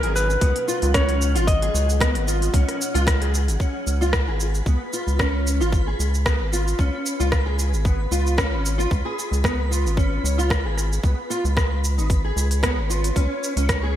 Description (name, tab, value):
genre	organic downtempo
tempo	113 BPM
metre	4/4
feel	swing 54% on 16ths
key	Db mixolydian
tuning	A4 = 441 Hz
part	clean lap steel guitar	melody	0.0-3.0 s	Bb4 to Eb5	-26 LUFS	left 1 dB	digital delay, shimmer reverb
part	warm analog pad	sustained chords	0.0-3.6 s	Cb3 to Eb4	-39 LUFS	right 2 dB	none
part	nylon-string guitar	arpeggios	0.0-14.0 s	Ab3 to Ab4	-27 LUFS	equal	ensemble chorus, ping-pong delay, shimmer reverb
part	round analog bass	bass	0.0-14.0 s	Ab1 to Db2	-22 LUFS	equal	none
part	organic electronic drum kit	drums	0.0-13.8 s	hi-hat, rim click, shaker	-27 LUFS	right 1 dB	none
part	twinkling granular texture	texture	0.0-14.0 s	Gb3 to Cb6	-35 LUFS	left 1 dB	built-in reverb, shimmer reverb
part	electronic kick drum	drums	0.4-13.8 s	none	-22 LUFS	equal	none
room	light reverb, digital ambience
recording	bright 1980s-style digital production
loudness	-19 LUFS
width	side -11 dB against mid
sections	0.0-3.6 A section; 3.6-14.0 B section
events	none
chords	0.0 Db7sus4; 3.6 Db7